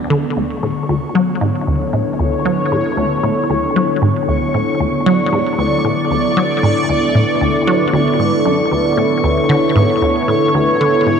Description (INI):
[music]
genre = ambient, sequencer-driven space music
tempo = 115 BPM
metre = 4/4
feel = straight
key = unclear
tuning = A4 = 439 Hz
[part]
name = sweeping resonant pad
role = sustained chords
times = 0.0-11.2 s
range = D3 to D5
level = -15 LUFS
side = equal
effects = chorus
[part]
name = bubbling stepped-filter texture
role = texture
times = 0.0-11.2 s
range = D4 to C#6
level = -25 LUFS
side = left 2 dB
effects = chorus, built-in reverb
[part]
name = resonant blip pluck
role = riff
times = 0.1-11.2 s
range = D2 to F#3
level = -17 LUFS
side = equal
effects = phaser, ping-pong delay
[sound]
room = wet cathedral reverb, RT60 6.5 s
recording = in a vast, echoing space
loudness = -13 LUFS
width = side -6 dB against mid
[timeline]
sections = 0.4-11.2 A section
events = none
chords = 0.4 Dmaj7(no3)